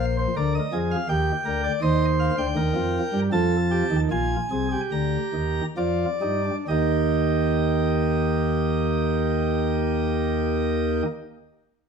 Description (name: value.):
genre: classical, baroque-style 3-part fugue for pipe organ.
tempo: 64-83 BPM.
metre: 3/4.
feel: straight.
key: Eb major.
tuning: A4 = 440 Hz.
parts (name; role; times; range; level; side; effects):
chamber organ, principal chorus; solo; 0.0-11.1 s; Bb1 to Bb5; -21 LUFS; right 1 dB; none.
room: wet stone room reverb, RT60 1.1 s.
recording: none.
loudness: -21 LUFS.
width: side -6 dB against mid.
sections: 0.0-6.7 A section; 6.7-11.9 B section.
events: slowing down 0.7-6.7.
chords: 0.0 Bb; 1.1 Eb; 1.8 Ebmaj13; 3.3 F7; 4.1 Bb7; 6.7 Eb.